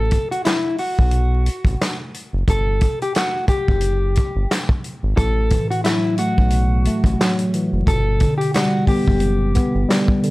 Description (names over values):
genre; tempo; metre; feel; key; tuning
hip hop, boom-bap hip-hop; 89 BPM; 4/4; swing 57% on 16ths; unclear; A4 = 440 Hz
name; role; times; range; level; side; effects
electric guitar at the edge of break-up; melody; 0.0-10.0 s; E4 to A4; -23 LUFS; left 1 dB; high-pass filter, low-pass filter
round analog bass; bass; 0.0-9.9 s; F#1 to B1; -19 LUFS; equal; transformer saturation
vintage drum kit; drums; 0.1-10.3 s; handclaps, hi-hat, kick drum, snare drum; -20 LUFS; equal; none
tine electric piano; accompaniment; 5.2-10.3 s; A2 to B3; -20 LUFS; equal; medium stereo tremolo, cassette tape, high-pass filter, low-pass filter
room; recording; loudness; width
small room ambience; dry, gritty hardware recording, vinyl crackle; -16 LUFS; side -20 dB against mid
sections
0.0-10.3 A section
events
break 0.0-5.2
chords
0.0 F#madd11; 2.5 N.C.; 5.2 A5; 7.9 G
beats
0.46 1.13 1.80 | 2.48 3.15 3.83 4.50 | 5.18 5.85 6.52 7.20 | 7.87 8.55 9.22 9.89